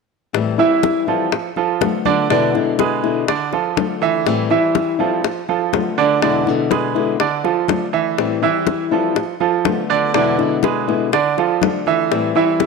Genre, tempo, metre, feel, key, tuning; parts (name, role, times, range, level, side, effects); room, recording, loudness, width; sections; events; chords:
latin, Cuban son and guajira; 122 BPM; 4/4; straight; A harmonic minor; A4 = 439 Hz
flamenco guitar; accompaniment; 0.3-12.7 s; E2 to F4; -20 LUFS; left 10 dB
bongos; percussion; 0.3-12.7 s; -23 LUFS; left 12 dB
congas; percussion; 0.3-12.7 s; -24 LUFS; left 12 dB
bright grand piano; arpeggios; 0.6-12.7 s; D3 to E5; -18 LUFS; right 10 dB
moderate plate reverb, RT60 2.3 s; 1960s-style stereo with parts hard left and right; -15 LUFS; side -4 dB against mid
0.3-12.7 A section
0.3 Am7; 1.3 Bm7b5; 2.3 E7; 3.3 Dm; 4.3 Am7; 5.2 Bm7b5; 6.2 E7; 7.2 Dm; 8.2 Am7; 9.2 Bm7b5; 10.1 E7; 11.1 Dm; 12.1 Am7